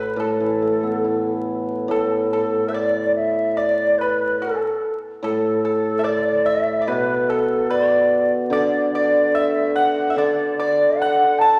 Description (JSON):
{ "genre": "chinese traditional, Chinese chamber ensemble", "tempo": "73 BPM", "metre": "4/4", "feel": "rubato", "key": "A zhi mode", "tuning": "A4 = 440 Hz", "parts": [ { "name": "xiao", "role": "melody", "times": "0.0-11.6 s", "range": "A4 to A5", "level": "-22 LUFS", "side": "equal", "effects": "none" }, { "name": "pipa", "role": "second line", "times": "0.0-11.6 s", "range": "A4 to A5", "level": "-30 LUFS", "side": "equal", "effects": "none" }, { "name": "hammered dulcimer", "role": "accompaniment", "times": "0.0-11.6 s", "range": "A2 to E4", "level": "-24 LUFS", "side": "equal", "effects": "none" } ], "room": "wet scoring stage reverb, RT60 1.5 s", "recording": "vinyl crackle", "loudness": "-20 LUFS", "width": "mono", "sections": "0.0-1.9 A section; 1.9-11.6 B section", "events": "none", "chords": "none" }